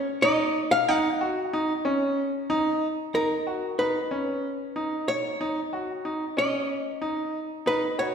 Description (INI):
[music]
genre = progressive instrumental, progressive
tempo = 186 BPM (eighths)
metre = 7/8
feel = straight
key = unclear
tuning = A4 = 440 Hz
[part]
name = archtop guitar, miked and amplified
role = melody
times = 0.0-8.1 s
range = A#4 to F#5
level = -26 LUFS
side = left 1 dB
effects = none
[part]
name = bright grand piano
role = arpeggios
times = 0.2-8.1 s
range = C#4 to F#4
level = -27 LUFS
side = equal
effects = none
[sound]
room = wet scoring stage reverb, RT60 1.6 s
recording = recorded in a church or concert hall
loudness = -24 LUFS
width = side -6 dB against mid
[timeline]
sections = 0.0-3.1 A section; 3.1-8.1 B section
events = none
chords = 0.0 C#sus2